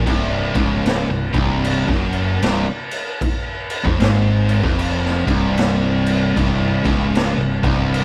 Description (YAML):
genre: stoner and doom metal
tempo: 76 BPM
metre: 4/4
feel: swing 62% on 8ths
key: unclear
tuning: A4 = 439 Hz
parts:
  - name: fuzz guitar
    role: riff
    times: 0.0-8.0 s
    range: C2 to Ab2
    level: -22 LUFS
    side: equal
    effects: distortion
  - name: tight distorted guitar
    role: riff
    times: 0.0-8.0 s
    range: C2 to Ab2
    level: -25 LUFS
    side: equal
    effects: distortion
  - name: fuzz fingered electric bass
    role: bass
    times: 0.0-8.0 s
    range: C1 to Ab1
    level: -26 LUFS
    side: equal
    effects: overdrive
  - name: raw garage drum kit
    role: drums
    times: 0.1-8.0 s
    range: crash cymbal, kick drum, snare drum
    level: -23 LUFS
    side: equal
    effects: none
room: light reverb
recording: band playing live in one room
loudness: -18 LUFS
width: mono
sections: 0.0-8.0 A section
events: none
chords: none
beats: | 0.06 0.85 1.64 2.42 | 3.21 4.00 4.78 5.57 | 6.36 7.14 7.93